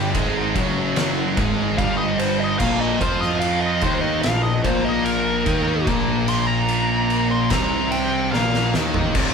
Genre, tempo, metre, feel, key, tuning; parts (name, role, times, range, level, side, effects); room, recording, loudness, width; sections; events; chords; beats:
stoner and doom metal; 73 BPM; 4/4; straight; A4 = 441 Hz
fuzz lead guitar; melody; 0.0-8.7 s; Bb4 to C6; -24 LUFS; left 1 dB; wah, distortion
thick fuzz guitar; riff; 0.0-9.3 s; C2 to F4; -27 LUFS; left 9 dB; distortion
thick fuzz guitar; riff; 0.0-9.3 s; C2 to F4; -26 LUFS; right 8 dB; distortion
tight distorted guitar; riff; 0.0-9.3 s; C2 to F4; -25 LUFS; equal; distortion
fuzz picked electric bass; bass; 0.0-9.3 s; C1 to F2; -26 LUFS; left 1 dB; overdrive
oversized low-tuned drum kit; drums; 0.1-9.3 s; crash cymbal, kick drum, ride cymbal, snare drum, toms; -24 LUFS; equal
moderate large studio reverb, RT60 1.2 s; band playing live in one room; -18 LUFS; side -6 dB against mid
0.0-9.1 A section
lead electric guitar solo 0.0-9.1; drum fill 8.3-9.1
0.0 N.C.; 2.6 Bb5
0.14 0.96 1.78 | 2.60 3.42 4.24 5.06 | 5.88 6.69 7.51 8.33 | 9.15